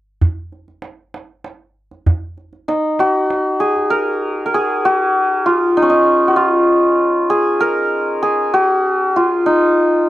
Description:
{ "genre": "Persian modal ensemble", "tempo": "65 BPM (dotted quarters)", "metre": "6/8", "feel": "straight", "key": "unclear", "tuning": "A4 = 439 Hz", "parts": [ { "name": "tombak", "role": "percussion", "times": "0.2-3.8 s", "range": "none", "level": "-18 LUFS", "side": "right 1 dB", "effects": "none" }, { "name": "santur", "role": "melody", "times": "2.7-10.1 s", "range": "Db4 to Bb4", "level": "-13 LUFS", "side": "equal", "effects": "none" } ], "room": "light reverb", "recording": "dry, close 1970s-style studio recording, faint mains hum", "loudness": "-13 LUFS", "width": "side -14 dB against mid", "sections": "0.2-3.9 A section; 3.9-10.1 B section", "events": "none", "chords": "none", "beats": "| 0.21 1.14 | 2.06 2.99 | 3.91 4.84 | 5.76 6.69 | 7.61 8.54 | 9.46" }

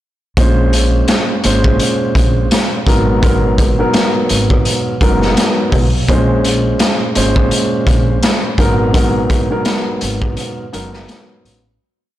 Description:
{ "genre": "hip hop, boom-bap hip-hop", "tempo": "84 BPM", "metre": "4/4", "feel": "swing 55% on 16ths", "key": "unclear", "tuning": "A4 = 441 Hz", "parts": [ { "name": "dark grand piano", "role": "accompaniment", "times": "0.4-11.6 s", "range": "Ab2 to C5", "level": "-16 LUFS", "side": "equal", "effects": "high-pass filter, low-pass filter" }, { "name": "upright bass", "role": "bass", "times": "0.4-11.8 s", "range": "Gb1 to Cb2", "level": "-17 LUFS", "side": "equal", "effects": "transformer saturation" }, { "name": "raw garage drum kit", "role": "drums", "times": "0.4-11.6 s", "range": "hi-hat, kick drum, snare drum", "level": "-14 LUFS", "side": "equal", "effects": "none" } ], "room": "light reverb, studio ambience", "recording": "blown-out, overdriven recording, overdrive", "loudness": "-11 LUFS", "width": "side -14 dB against mid", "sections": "0.4-11.8 verse", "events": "fade-out 8.9-11.8; break 10.4-11.8", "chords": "0.4 Bbm9; 2.9 Abm9; 6.1 Bbm9; 8.6 Abm9", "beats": "| 0.37 1.09 1.80 2.52 | 3.23 3.94 4.66 5.37 | 6.09 6.80 7.51 8.23 | 8.94 9.66 10.37 11.09" }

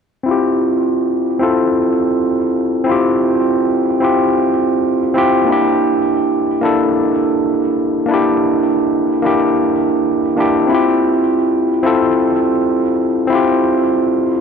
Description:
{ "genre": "chillout", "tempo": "92 BPM", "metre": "4/4", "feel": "straight", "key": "unclear", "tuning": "A4 = 441 Hz", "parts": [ { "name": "overdriven tine electric piano", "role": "accompaniment", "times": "0.2-14.4 s", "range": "Bb3 to A4", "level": "-13 LUFS", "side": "equal", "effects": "auto-pan, low-pass filter, ping-pong delay" } ], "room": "wet plate reverb, RT60 3.2 s", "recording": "none", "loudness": "-13 LUFS", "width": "side -6 dB against mid", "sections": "0.3-14.4 A section", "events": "none", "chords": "0.3 Cadd11; 5.5 Gm69/Bb; 10.7 Cadd11", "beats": "| 0.27 0.92 1.58 2.23 | 2.88 3.53 4.18 4.84 | 5.49 6.14 6.79 7.45 | 8.10 8.75 9.40 10.05 | 10.71 11.36 12.01 12.66 | 13.32 13.97" }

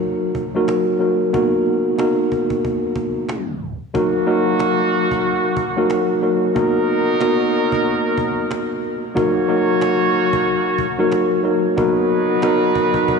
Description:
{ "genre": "hip hop, boom-bap hip-hop", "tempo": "92 BPM", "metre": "4/4", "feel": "swing 58% on 16ths", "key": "Eb minor", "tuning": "A4 = 436 Hz", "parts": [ { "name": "mellow tine electric piano", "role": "accompaniment", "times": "0.0-13.2 s", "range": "Gb3 to Bb4", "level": "-17 LUFS", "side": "left 1 dB", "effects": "medium stereo tremolo, high-pass filter, low-pass filter" }, { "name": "cajon", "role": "drums", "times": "0.0-13.2 s", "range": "none", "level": "-31 LUFS", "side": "right 2 dB", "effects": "vintage 12-bit sampler grit" }, { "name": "bright trumpet section", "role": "stabs", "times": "4.0-13.2 s", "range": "F#3 to Db5", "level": "-21 LUFS", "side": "right 3 dB", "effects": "high-pass filter, low-pass filter, diffuse ambient delay" } ], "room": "wet cathedral reverb, RT60 6.2 s", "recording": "dreamy mix soaked in reverb, tape stop, small room reverb", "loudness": "-16 LUFS", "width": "side -5 dB against mid", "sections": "0.0-3.9 A section; 3.9-13.2 B section", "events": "tape stop 3.3-3.9", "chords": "0.0 Ebm; 1.3 Bmaj7; 3.9 Ebm; 6.6 Bmaj7; 9.2 Ebm; 11.8 Bmaj7", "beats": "0.04 0.69 | 1.34 1.99 2.65 3.30 | 3.95 4.60 5.25 5.91 | 6.56 7.21 7.86 8.52 | 9.17 9.82 10.47 11.12 | 11.78 12.43 13.08" }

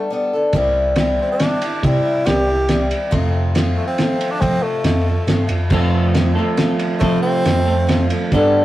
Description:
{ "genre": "folk rock and heartland rock", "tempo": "139 BPM", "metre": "3/4", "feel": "straight", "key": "unclear", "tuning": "A4 = 443 Hz", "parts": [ { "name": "bright tenor saxophone", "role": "melody", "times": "0.0-8.1 s", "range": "A3 to G4", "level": "-21 LUFS", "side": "equal", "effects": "none" }, { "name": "picked acoustic archtop guitar", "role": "accompaniment", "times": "0.0-8.6 s", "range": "F2 to A4", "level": "-20 LUFS", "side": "left 2 dB", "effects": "none" }, { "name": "bell-like tine electric piano", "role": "bass", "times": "0.5-8.6 s", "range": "C2 to F3", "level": "-20 LUFS", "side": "equal", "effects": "medium stereo tremolo" }, { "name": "cloth-damped thuddy drum kit", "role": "drums", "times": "0.5-8.4 s", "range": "crash cymbal, kick drum, ride cymbal, snare drum", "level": "-20 LUFS", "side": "equal", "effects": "none" }, { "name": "mellow tonewheel organ", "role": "sustained chords", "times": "5.7-8.6 s", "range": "A3 to A4", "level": "-27 LUFS", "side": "right 2 dB", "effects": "none" }, { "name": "electric guitar through a small old amp", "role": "riff", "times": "5.7-8.6 s", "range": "F3 to A4", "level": "-20 LUFS", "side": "right 3 dB", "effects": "none" } ], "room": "wet booth ambience, RT60 0.2 s", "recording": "rough rehearsal-room recording", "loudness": "-15 LUFS", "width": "side -15 dB against mid", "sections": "0.0-5.7 A section; 5.7-8.6 A section", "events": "none", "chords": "0.0 Gadd9; 0.5 C; 3.1 F", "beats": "0.10 | 0.53 0.96 1.40 | 1.83 2.26 2.69 | 3.12 3.56 3.99 | 4.42 4.85 5.29 | 5.72 6.15 6.58 | 7.02 7.45 7.88 | 8.31" }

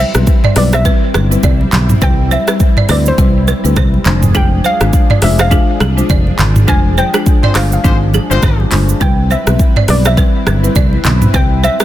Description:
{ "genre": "afrobeats", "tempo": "103 BPM", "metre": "4/4", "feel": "swing 58% on 16ths", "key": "C major", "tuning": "A4 = 440 Hz", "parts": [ { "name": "soft round pluck", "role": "melody", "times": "0.0-11.8 s", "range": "C5 to Ab5", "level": "-19 LUFS", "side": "left 1 dB", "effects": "chorus, ping-pong delay" }, { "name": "buzzing marimba with medium mallets", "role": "accompaniment", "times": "0.0-11.8 s", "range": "G3 to C5", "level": "-19 LUFS", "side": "left 3 dB", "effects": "none" }, { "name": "warm analog pad", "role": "sustained chords", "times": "0.0-11.8 s", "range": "F3 to B4", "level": "-24 LUFS", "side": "equal", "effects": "chorus" }, { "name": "balafon", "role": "riff", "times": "0.0-11.8 s", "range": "Ab4 to D5", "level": "-21 LUFS", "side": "right 7 dB", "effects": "ping-pong delay" }, { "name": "fingered electric bass", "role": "bass", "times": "0.1-11.7 s", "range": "F1 to D2", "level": "-13 LUFS", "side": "equal", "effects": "none" }, { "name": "afro-pop drum kit", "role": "drums", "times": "0.1-11.8 s", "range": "handclaps, hi-hat, kick drum, rim click, shaker, toms", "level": "-12 LUFS", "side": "equal", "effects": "soft clipping on snare" }, { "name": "congas", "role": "percussion", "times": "0.7-11.8 s", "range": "none", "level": "-22 LUFS", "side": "right 2 dB", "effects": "none" }, { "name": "mellow horn section", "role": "second line", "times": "7.4-8.7 s", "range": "Ab3 to C5", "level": "-21 LUFS", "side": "left 5 dB", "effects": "none" } ], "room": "studio reverb", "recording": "dense, heavily limited modern master", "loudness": "-9 LUFS", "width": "side -13 dB against mid", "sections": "0.0-11.8 A section", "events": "band accent 6.7-9.0", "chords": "0.0 Cmaj7; 4.1 Fm6; 9.0 Cmaj7", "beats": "0.27 0.85 1.44 | 2.02 2.60 3.18 3.77 | 4.35 4.93 5.51 6.10 | 6.68 7.26 7.84 8.43 | 9.01 9.59 10.18 10.76 | 11.34" }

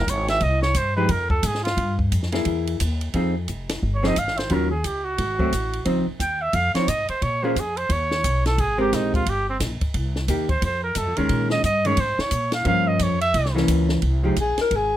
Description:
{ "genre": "jazz, small-group swing and bop", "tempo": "176 BPM", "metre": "4/4", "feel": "swing 62% on 8ths", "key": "F minor", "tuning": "A4 = 443 Hz", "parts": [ { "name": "warm trumpet", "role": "second line", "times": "0.0-13.5 s", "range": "C4 to G5", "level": "-23 LUFS", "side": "right 2 dB", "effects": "none" }, { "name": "upright bass", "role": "bass", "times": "0.0-15.0 s", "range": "F1 to Bb2", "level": "-24 LUFS", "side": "equal", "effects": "none" }, { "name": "compact cocktail drum kit", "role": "drums", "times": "0.1-14.8 s", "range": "hi-hat, kick drum, ride cymbal, snare drum", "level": "-28 LUFS", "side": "equal", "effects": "none" }, { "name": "hollow-body jazz guitar", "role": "accompaniment", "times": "1.0-14.4 s", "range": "Eb3 to C5", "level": "-23 LUFS", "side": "equal", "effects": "none" }, { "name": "growling alto saxophone", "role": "melody", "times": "14.4-15.0 s", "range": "Ab4 to Bb4", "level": "-20 LUFS", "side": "left 3 dB", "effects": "none" } ], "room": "light reverb", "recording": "none", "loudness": "-20 LUFS", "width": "side -12 dB against mid", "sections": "0.0-3.1 A section; 3.1-14.0 A section", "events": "trumpet solo 0.0-14.0", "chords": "0.4 Fmadd9; 2.5 Emaj7#11; 3.1 Fm7; 4.5 Ebm9; 5.2 Ab7b9; 5.9 Dbmaj9; 7.2 Bbm9; 7.9 Badd9; 8.6 Abmaj9; 9.9 Cm7; 10.6 Ebm13; 11.3 Bbm7; 12.7 Gm7b5; 13.3 C7b9; 14.0 Fm", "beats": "0.08 | 0.42 0.76 1.10 1.44 | 1.78 2.12 2.46 2.80 | 3.14 3.48 3.82 4.16 | 4.50 4.84 5.18 5.52 | 5.86 6.20 6.54 6.88 | 7.22 7.56 7.90 8.24 | 8.58 8.92 9.27 9.61 | 9.95 10.29 10.62 10.97 | 11.31 11.65 11.99 12.33 | 12.67 13.01 13.35 13.69 | 14.03 14.37 14.71" }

